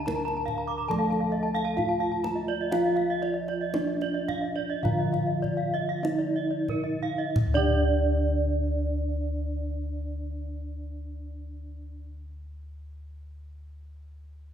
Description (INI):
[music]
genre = Balinese gamelan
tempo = 44-75 BPM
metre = 4/4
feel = straight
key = D pelog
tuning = A4 = 440 Hz
[part]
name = gamelan-type bronze metallophone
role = melody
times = 0.0-12.0 s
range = D4 to Bb4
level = -32 LUFS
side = right 2 dB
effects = none
[part]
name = gamelan-type bronze metallophone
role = accompaniment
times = 0.0-12.1 s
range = D3 to A3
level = -36 LUFS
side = right 2 dB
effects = none
[part]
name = gamelan-type bronze metallophone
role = arpeggios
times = 0.0-12.1 s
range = Bb4 to D6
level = -33 LUFS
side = right 6 dB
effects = none
[part]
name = gamelan-type bossed gongs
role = bass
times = 0.0-12.0 s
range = D2 to F4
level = -31 LUFS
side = left 1 dB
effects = none
[part]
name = gamelan-type bronze metallophone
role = arpeggios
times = 0.1-12.0 s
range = D5 to Bb5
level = -32 LUFS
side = left 3 dB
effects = none
[part]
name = kendang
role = percussion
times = 0.1-8.0 s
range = none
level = -34 LUFS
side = equal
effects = none
[sound]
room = wet recital hall reverb, RT60 1.6 s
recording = recorded in a church or concert hall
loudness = -25 LUFS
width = side -9 dB against mid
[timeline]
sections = 0.0-7.4 A section; 7.4-12.9 B section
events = slowing down 0.0-7.4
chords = none